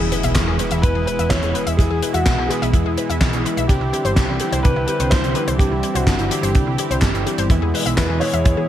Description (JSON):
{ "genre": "italo disco", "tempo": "126 BPM", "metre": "4/4", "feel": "straight", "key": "unclear", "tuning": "A4 = 437 Hz", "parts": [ { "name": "dark baby grand piano", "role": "melody", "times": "0.0-8.7 s", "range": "F#4 to C#5", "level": "-24 LUFS", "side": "left 1 dB", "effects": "digital delay" }, { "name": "warm analog pad", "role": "sustained chords", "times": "0.0-8.7 s", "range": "B2 to G#4", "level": "-27 LUFS", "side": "left 2 dB", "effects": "chorus" }, { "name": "analog pluck", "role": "arpeggios", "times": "0.0-8.7 s", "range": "D4 to E5", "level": "-27 LUFS", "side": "left 2 dB", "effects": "chorus, tape echo" }, { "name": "analog synth brass", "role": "stabs", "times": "0.0-8.7 s", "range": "E3 to G4", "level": "-26 LUFS", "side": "right 3 dB", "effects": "chorus" }, { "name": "picked electric bass", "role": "bass", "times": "0.0-8.7 s", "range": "G1 to E2", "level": "-22 LUFS", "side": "equal", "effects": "tube saturation" }, { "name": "impact", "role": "sound effects", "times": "0.0-1.8 s", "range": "none", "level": "-29 LUFS", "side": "equal", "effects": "none" }, { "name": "damped 70s drum kit", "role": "drums", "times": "0.1-8.6 s", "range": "handclaps, hi-hat, snare drum", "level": "-23 LUFS", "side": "left 1 dB", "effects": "studio reverb, gated reverb" }, { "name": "kick drum", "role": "drums", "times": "0.4-8.6 s", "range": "none", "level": "-17 LUFS", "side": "equal", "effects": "studio reverb" } ], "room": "light reverb, studio ambience", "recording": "none", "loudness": "-16 LUFS", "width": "side -11 dB against mid", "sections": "0.0-8.7 A section", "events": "impact 0.0-1.8", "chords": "0.0 E; 3.7 Cadd9; 7.5 E", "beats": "0.36 0.83 1.31 | 1.79 2.26 2.74 3.21 | 3.69 4.17 4.64 5.12 | 5.60 6.07 6.55 7.03 | 7.50 7.98 8.45" }